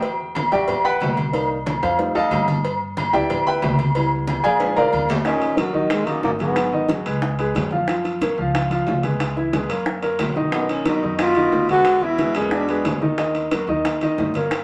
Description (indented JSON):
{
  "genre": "Afro-Cuban jazz",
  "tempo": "182 BPM",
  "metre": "4/4",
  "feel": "straight",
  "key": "Eb minor from 5.3 s",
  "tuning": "A4 = 440 Hz",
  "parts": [
    { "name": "warm baby grand piano", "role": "accompaniment", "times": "0.0-14.6 s", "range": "Eb3 to B5", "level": "-24 LUFS", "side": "equal", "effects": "none" },
    { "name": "upright bass", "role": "bass", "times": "0.0-14.6 s", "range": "Ab1 to G2", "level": "-31 LUFS", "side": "equal", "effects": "none" },
    { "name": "agogo bells and timbales", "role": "percussion", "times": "0.0-14.6 s", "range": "none", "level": "-29 LUFS", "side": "equal", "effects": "none" },
    { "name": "congas", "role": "percussion", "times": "0.0-14.6 s", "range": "none", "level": "-32 LUFS", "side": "equal", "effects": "none" },
    { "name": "cowbell and bongos", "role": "percussion", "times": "0.0-14.6 s", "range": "none", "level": "-29 LUFS", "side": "equal", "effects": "none" },
    { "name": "mellow trombone", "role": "melody", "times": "5.3-6.9, 10.5-13.0 s", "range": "Gb3 to F#4", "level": "-23 LUFS", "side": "equal", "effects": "none" },
    { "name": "warm baritone saxophone", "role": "second line", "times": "5.3-6.9, 10.5-13.0 s", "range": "Eb2 to D3", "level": "-31 LUFS", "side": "equal", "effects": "none" }
  ],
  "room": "wet studio reverb, RT60 0.5 s",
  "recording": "none",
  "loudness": "-21 LUFS",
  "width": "mono",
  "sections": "0.0-5.3 A section; 5.3-14.6 B section",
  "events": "grand piano solo 0.0-5.3; drum fill 4.6-5.3",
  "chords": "0.0 Em9; 1.3 Cm7; 2.0 F9; 2.6 G69; 3.9 C#m7b5; 4.6 A#7; 5.3 Ebm7; 6.6 Abm7; 7.2 Db7; 7.9 Gbmaj7; 9.2 Dbm7; 9.9 Gb; 10.5 B; 11.9 E7; 13.2 Ebm",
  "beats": "| 0.03 0.36 0.69 1.01 | 1.34 1.66 1.99 2.31 | 2.64 2.97 3.29 3.62 | 3.94 4.27 4.60 4.92 | 5.25 5.58 5.91 6.24 | 6.57 6.89 7.22 7.55 | 7.88 8.21 8.54 8.87 | 9.20 9.54 9.87 10.20 | 10.53 10.86 11.19 11.52 | 11.85 12.19 12.52 12.85 | 13.18 13.51 13.85 14.18 | 14.51"
}